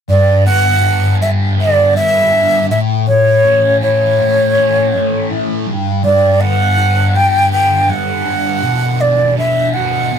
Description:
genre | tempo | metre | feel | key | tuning
rock | 81 BPM | 4/4 | straight | unclear | A4 = 439 Hz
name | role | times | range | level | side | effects
breathy jazz flute | melody | 0.1-10.2 s | C#5 to G5 | -12 LUFS | right 1 dB | none
thick fuzz guitar | riff | 0.1-10.2 s | G2 to F#4 | -14 LUFS | left 1 dB | distortion, phaser
room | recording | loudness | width
wet booth ambience, RT60 0.2 s | rough rehearsal-room recording, tube saturation | -10 LUFS | side -8 dB against mid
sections
0.1-10.2 A section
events
none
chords
0.1 G; 2.7 A; 5.7 G; 8.6 Bm

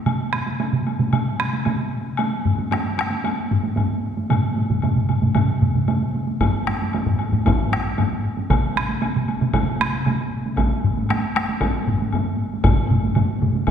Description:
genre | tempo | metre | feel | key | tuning
japanese traditional, taiko drum ensemble | 115 BPM | 4/4 | straight | none | none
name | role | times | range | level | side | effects
solo taiko drums | percussion | 0.1-13.7 s | none | -25 LUFS | right 3 dB | none
solo taiko drums | percussion | 0.1-13.7 s | none | -22 LUFS | right 3 dB | none
woodblock | percussion | 0.1-13.7 s | none | -30 LUFS | left 6 dB | none
taiko ensemble | percussion | 2.5-13.7 s | none | -22 LUFS | left 2 dB | none
taiko ensemble | percussion | 6.4-13.7 s | none | -24 LUFS | equal | none
room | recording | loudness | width
wet concert hall reverb, RT60 2.0 s | recorded in a church or concert hall | -19 LUFS | side -8 dB against mid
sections
0.0-13.7 A section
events
speeding up 0.0-13.7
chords
none

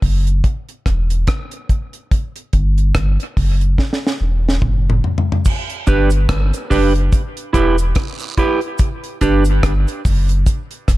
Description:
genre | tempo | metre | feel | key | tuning
dub reggae | 72 BPM | 4/4 | swing 58% on 16ths | G major | A4 = 441 Hz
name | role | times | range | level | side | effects
warm sub bass | bass | 0.0-11.0 s | E1 to G1 | -15 LUFS | equal | none
deep reggae drum kit | drums | 0.0-11.0 s | crash cymbal, hi-hat, kick drum, rim click, snare drum, toms | -18 LUFS | equal | none
cabasa and guiro | percussion | 5.5-11.0 s | none | -34 LUFS | right 7 dB | dub echo
clean electric guitar | accompaniment | 5.9-9.4 s | D4 to B4 | -19 LUFS | right 3 dB | dub echo
room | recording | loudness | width
small room ambience | dark, warm production | -14 LUFS | side -17 dB against mid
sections
0.0-5.5 A section; 5.5-11.0 B section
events
break 0.0-5.5; drum fill 3.8-5.5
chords
0.0 N.C.; 3.8 Esus2; 5.5 G; 7.1 Em; 8.8 G; 10.5 N.C.

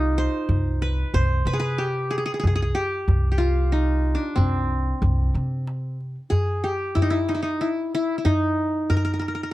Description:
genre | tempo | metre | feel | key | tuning
Arabic maqam ensemble | 93 BPM | 3/4 | straight | C maqam nahawand | A4 = 440 Hz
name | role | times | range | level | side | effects
qanun | melody | 0.0-9.5 s | C4 to C5 | -24 LUFS | equal | none
upright bass | bass | 0.0-6.1 s | C2 to C3 | -23 LUFS | equal | none
darbuka | percussion | 0.2-9.4 s | none | -24 LUFS | equal | none
room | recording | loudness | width
light reverb | dark, warm production | -21 LUFS | side -16 dB against mid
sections
0.0-6.3 A section; 6.3-9.5 B section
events
none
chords
none

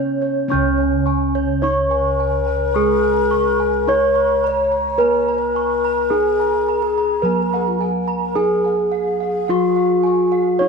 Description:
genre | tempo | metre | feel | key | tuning
gamelan | 53 BPM | 4/4 | straight | unclear | A4 = 436 Hz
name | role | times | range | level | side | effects
gamelan-type bronze metallophone | melody | 0.0-10.7 s | Db4 to Db5 | -18 LUFS | equal | none
gamelan-type bronze metallophone | accompaniment | 0.0-10.7 s | Db3 to Cb4-45c | -28 LUFS | right 11 dB | none
gamelan-type bossed gongs | arpeggios | 0.0-10.7 s | Db5 to Db6 | -27 LUFS | left 6 dB | none
gamelan-type bronze metallophone | arpeggios | 0.0-10.7 s | Db5 to Db6 | -25 LUFS | right 8 dB | none
gamelan-type bossed gongs | bass | 0.0-10.7 s | Db2 to Cb5-45c | -25 LUFS | equal | none
breathy mellow low xiao | second line | 1.9-10.7 s | Gb4-32c to Eb5 | -22 LUFS | left 10 dB | none
room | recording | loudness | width
wet echo chamber reverb, RT60 1.6 s, small room reverb | 1960s-style stereo with parts hard left and right | -15 LUFS | side -5 dB against mid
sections
0.5-10.7 A section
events
none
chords
none

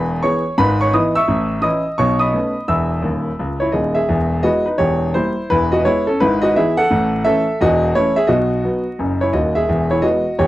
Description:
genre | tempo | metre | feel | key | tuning
jazz, stride piano | 171 BPM | 4/4 | swing 64% on 8ths | E major | A4 = 439 Hz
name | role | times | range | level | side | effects
clear grand piano | solo | 0.0-10.5 s | D#1 to E6 | -14 LUFS | equal | none
room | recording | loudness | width
light reverb | dry, close 1970s-style studio recording, vinyl crackle | -15 LUFS | side -16 dB against mid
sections
0.0-4.1 A section; 4.1-10.5 A section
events
grand piano fill 3.0-4.1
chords
0.0 E; 0.6 E/G#; 1.3 A; 2.0 B9; 2.7 E; 4.8 Edim7; 5.5 E; 6.2 E/G#; 6.9 A; 8.3 B; 9.7 E

